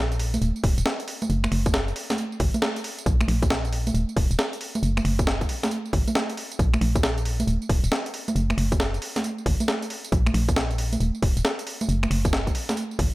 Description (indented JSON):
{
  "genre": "UK garage, two-step garage",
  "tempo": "136 BPM",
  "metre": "4/4",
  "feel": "swing 65% on 16ths",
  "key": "unclear",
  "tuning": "A4 = 439 Hz",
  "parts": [
    { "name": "organ-like FM bass", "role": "bass", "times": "0.0-13.1 s", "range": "Eb1 to Bb1", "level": "-24 LUFS", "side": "equal", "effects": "none" },
    { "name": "breakbeat sampler-style drum kit", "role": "drums", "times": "0.1-13.1 s", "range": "congas, finger snaps, hi-hat, snare drum, tambourine", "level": "-26 LUFS", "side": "right 1 dB", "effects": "none" },
    { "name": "electronic kick drum", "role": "drums", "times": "0.6-13.1 s", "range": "none", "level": "-24 LUFS", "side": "equal", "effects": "none" }
  ],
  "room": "light reverb",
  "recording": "none",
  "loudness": "-22 LUFS",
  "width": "side -19 dB against mid",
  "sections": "0.0-13.1 A section",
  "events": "none",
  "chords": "none",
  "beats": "0.42 0.86 | 1.30 1.74 2.18 2.62 | 3.06 3.50 3.94 4.39 | 4.83 5.27 5.71 6.15 | 6.59 7.03 7.47 7.92 | 8.36 8.80 9.24 9.68 | 10.12 10.56 11.00 11.45 | 11.89 12.33 12.77"
}